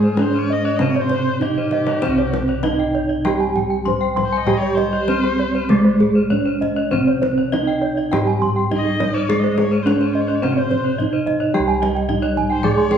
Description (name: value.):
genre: Balinese gamelan.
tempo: 98-110 BPM.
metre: 4/4.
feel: straight.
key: C pelog.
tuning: A4 = 440 Hz.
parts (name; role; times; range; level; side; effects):
gamelan-type bronze metallophone; melody; 0.0-13.0 s; Ab3 to C5; -19 LUFS; right 2 dB; none.
warm erhu; second line; 0.0-13.0 s; G4 to Eb5; -27 LUFS; left 4 dB; none.
gamelan-type bronze metallophone; accompaniment; 0.0-13.0 s; C3 to Ab3; -26 LUFS; equal; none.
gamelan-type bronze metallophone; arpeggios; 0.0-13.0 s; Ab4 to C6; -25 LUFS; left 3 dB; none.
gamelan-type bronze metallophone; arpeggios; 0.0-12.9 s; Ab4 to C6; -25 LUFS; right 3 dB; none.
gamelan-type bossed gongs; bass; 0.0-13.0 s; C2 to Ab4; -25 LUFS; right 1 dB; none.
kendang; percussion; 0.0-13.0 s; none; -28 LUFS; left 3 dB; none.
room: wet recital hall reverb, RT60 1.5 s.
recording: studio ambience.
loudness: -16 LUFS.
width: side -8 dB against mid.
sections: 0.0-11.5 A section; 11.5-13.0 B section.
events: drum fill 1.6-2.0.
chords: none.